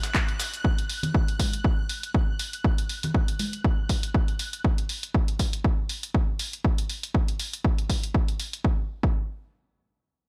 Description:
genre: deep house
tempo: 120 BPM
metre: 4/4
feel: swing 56% on 16ths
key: unclear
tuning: A4 = 441 Hz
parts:
  - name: dusty soul sampler-style drum kit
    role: drums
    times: 0.0-0.5 s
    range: hi-hat, snare drum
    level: -38 LUFS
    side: equal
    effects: sidechain pumping on hats, high-pass filter on hats, high-pass filter on snare
  - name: punchy analog drum machine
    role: drums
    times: 0.0-8.6 s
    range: cabasa, handclaps, hi-hat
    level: -34 LUFS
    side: equal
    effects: none
  - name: string machine, violins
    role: texture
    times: 0.0-4.7 s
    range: F#6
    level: -42 LUFS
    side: equal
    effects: ensemble chorus
  - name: warm symphonic string section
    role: texture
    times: 0.0-0.6 s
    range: C#4 to D#5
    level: -62 LUFS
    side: equal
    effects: none
  - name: electronic kick drum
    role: drums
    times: 0.1-9.2 s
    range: none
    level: -26 LUFS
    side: equal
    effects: none
  - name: congas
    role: percussion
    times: 1.0-3.5 s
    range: none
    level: -35 LUFS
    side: equal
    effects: none
room: little or no reverb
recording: none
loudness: -26 LUFS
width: mono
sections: 0.0-8.6 A section; 8.6-10.3 B section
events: none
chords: 0.0 C#sus2; 0.6 N.C.

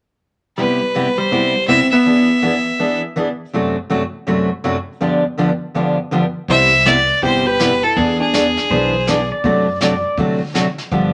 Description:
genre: country, western swing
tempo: 162 BPM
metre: 4/4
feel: swing 64% on 8ths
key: C major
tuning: A4 = 440 Hz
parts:
  - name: bright fiddle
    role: melody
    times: 0.6-3.0, 6.5-9.3 s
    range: G#4 to E5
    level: -18 LUFS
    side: equal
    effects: none
  - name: hollow-body jazz guitar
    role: second line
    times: 0.6-3.0, 6.5-9.3 s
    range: G3 to C5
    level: -22 LUFS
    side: equal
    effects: none
  - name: picked steel-string acoustic guitar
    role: accompaniment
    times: 0.6-11.1 s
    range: F#2 to G#4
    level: -20 LUFS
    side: equal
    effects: none
  - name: upright bass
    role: bass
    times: 6.5-11.1 s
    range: G1 to D3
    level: -25 LUFS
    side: equal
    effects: none
  - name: vintage brush drum kit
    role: drums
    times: 6.5-11.1 s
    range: brushed snare drum, hi-hat, kick drum, snare drum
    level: -27 LUFS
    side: equal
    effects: none
  - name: pedal steel guitar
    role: second line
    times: 8.7-10.2 s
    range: C5 to D5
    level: -23 LUFS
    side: equal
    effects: none
room: moderate club reverb, RT60 0.9 s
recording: none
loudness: -16 LUFS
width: mono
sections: 0.6-6.5 A section; 6.5-11.1 B section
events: none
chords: 0.6 Cmaj7; 2.1 E7; 3.5 D7/F#; 5.0 G7; 6.5 Cmaj7; 8.0 E7; 9.4 D7/F#

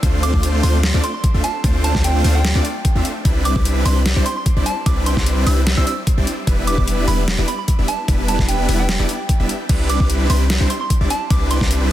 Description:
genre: future bass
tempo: 149 BPM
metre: 4/4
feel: half-time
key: C major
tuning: A4 = 440 Hz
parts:
  - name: supersaw chords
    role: riff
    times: 0.0-11.9 s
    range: G3 to E5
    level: -22 LUFS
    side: equal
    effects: sidechain pumping
  - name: warm 808-style bass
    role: bass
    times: 0.0-11.9 s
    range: E1 to D2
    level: -18 LUFS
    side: equal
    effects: sidechain pumping
  - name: dubstep drum kit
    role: drums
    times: 0.0-11.8 s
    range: crash cymbal, hi-hat, snare drum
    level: -25 LUFS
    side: left 1 dB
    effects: overdrive
  - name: electronic kick drum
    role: drums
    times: 0.0-11.7 s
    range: none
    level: -18 LUFS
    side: equal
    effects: overdrive
  - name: soft synth bell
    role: melody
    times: 0.2-11.6 s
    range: G5 to E6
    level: -26 LUFS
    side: right 3 dB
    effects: chorus, sidechain pumping, tape echo
room: little or no reverb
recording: dense, heavily limited modern master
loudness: -15 LUFS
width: side -13 dB against mid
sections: 0.0-11.9 A section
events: none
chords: 0.0 Dm7; 3.3 Cmaj9; 6.3 Em7; 9.7 Cmaj9

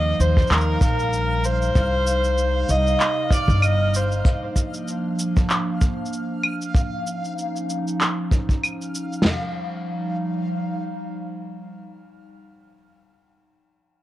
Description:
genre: folktronica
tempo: 96 BPM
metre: 4/4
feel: swing 56% on 16ths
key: Eb major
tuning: A4 = 440 Hz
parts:
  - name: warm violin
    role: melody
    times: 0.0-4.3 s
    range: Bb4 to Eb5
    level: -24 LUFS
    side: equal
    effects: cassette tape, tape echo
  - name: warbly tape-like pad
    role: sustained chords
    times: 0.0-12.5 s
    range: C3 to Eb4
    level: -28 LUFS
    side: right 1 dB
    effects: chorus, built-in reverb
  - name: upright bass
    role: bass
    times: 0.0-4.2 s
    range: G1 to Eb2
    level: -21 LUFS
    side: equal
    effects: none
  - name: backwards swelling texture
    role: texture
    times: 0.1-9.3 s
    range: F5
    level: -32 LUFS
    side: left 1 dB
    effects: built-in reverb
  - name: electronic cabasa, handclaps and claves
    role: drums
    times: 0.2-9.2 s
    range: none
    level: -25 LUFS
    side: equal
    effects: none
  - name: warm soul drum kit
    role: drums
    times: 0.4-9.4 s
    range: kick drum, ride cymbal, snare drum, toms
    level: -20 LUFS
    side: equal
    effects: none
room: light reverb, small room ambience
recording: home recording on cassette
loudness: -20 LUFS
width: side -14 dB against mid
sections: 0.0-9.2 A section; 9.2-11.7 B section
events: none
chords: 0.0 Ebadd9; 1.7 Cm; 4.2 Bb; 6.7 Dbadd9; 9.2 Ebadd9

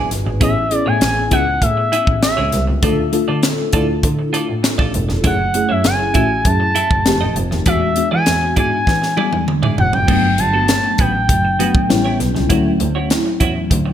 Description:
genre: polished 1980s jazz-funk pop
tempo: 99 BPM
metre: 4/4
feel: straight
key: A major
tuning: A4 = 440 Hz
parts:
  - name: expressive portamento lead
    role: melody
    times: 0.0-12.2 s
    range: E5 to A5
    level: -19 LUFS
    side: equal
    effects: chorus, ping-pong delay
  - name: FM electric piano with soft pad layer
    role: accompaniment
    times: 0.0-13.9 s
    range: F#3 to B4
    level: -20 LUFS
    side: left 3 dB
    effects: tremolo, lush chorus
  - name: semi-hollow electric guitar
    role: riff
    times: 0.0-13.9 s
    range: B3 to E5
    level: -25 LUFS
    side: right 6 dB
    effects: analog chorus
  - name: rich double bass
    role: bass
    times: 0.1-13.9 s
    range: E1 to E3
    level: -20 LUFS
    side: right 1 dB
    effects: none
  - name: crisp fusion drum kit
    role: drums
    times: 0.1-13.9 s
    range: crash cymbal, hi-hat, kick drum, snare drum, toms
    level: -18 LUFS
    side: equal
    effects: gated reverb
room: light reverb, studio ambience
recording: none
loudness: -13 LUFS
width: side -10 dB against mid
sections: 0.0-10.1 A section; 10.1-13.9 B section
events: drum fill 8.9-10.1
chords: 0.4 Amaj7; 2.8 Dm; 5.2 F#m7; 7.1 F9; 7.7 E7; 10.1 Gmaj9; 11.9 A7; 12.5 Dmaj9

